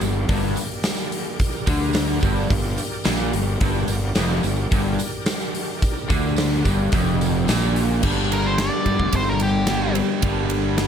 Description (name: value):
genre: classic rock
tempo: 109 BPM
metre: 4/4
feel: straight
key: G minor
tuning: A4 = 440 Hz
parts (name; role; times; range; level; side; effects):
- bright tonewheel organ; sustained chords; 0.0-10.9 s; G3 to D5; -34 LUFS; equal; slow rotary speaker, overdrive, chorus vibrato
- overdriven electric guitar; riff; 0.0-10.9 s; F2 to G3; -26 LUFS; left 14 dB; none
- overdriven electric guitar; riff; 0.0-10.9 s; F2 to G3; -27 LUFS; right 14 dB; none
- fuzz fingered electric bass; bass; 0.0-10.9 s; F1 to G2; -23 LUFS; equal; overdrive
- huge arena drum kit; drums; 0.0-10.9 s; crash cymbal, hi-hat, kick drum, ride cymbal, snare drum; -23 LUFS; equal; none
- tambourine; percussion; 0.0-7.7 s; none; -37 LUFS; right 16 dB; none
- picked twelve-string acoustic guitar; accompaniment; 8.0-10.9 s; G2 to A4; -33 LUFS; right 14 dB; ensemble chorus
- octave-fuzz lead guitar; melody; 8.3-10.0 s; G4 to D5; -26 LUFS; equal; distortion, tape echo
room: light reverb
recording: none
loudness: -19 LUFS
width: side -8 dB against mid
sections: 0.0-8.0 A section; 8.0-10.9 B section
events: lead electric guitar solo 8.0-10.9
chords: 0.0 Gm; 8.0 Gmadd9